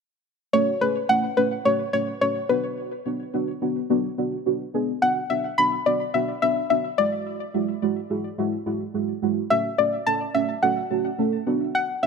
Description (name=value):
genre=pop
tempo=107 BPM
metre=4/4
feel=straight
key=F# minor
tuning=A4 = 444 Hz
part: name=soft round pluck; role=melody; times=0.5-12.1 s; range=B4 to B5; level=-22 LUFS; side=left 2 dB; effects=chorus, tape echo
part: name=deep mellow chord stab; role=accompaniment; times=0.5-12.1 s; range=G#3 to A4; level=-25 LUFS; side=right 2 dB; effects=chorus, phaser
room=light reverb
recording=none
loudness=-21 LUFS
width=side -5 dB against mid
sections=0.5-12.1 A section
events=none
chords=0.5 F#m; 2.5 D6; 5.0 Bm; 7.0 Eadd9; 9.5 F#m; 11.5 D6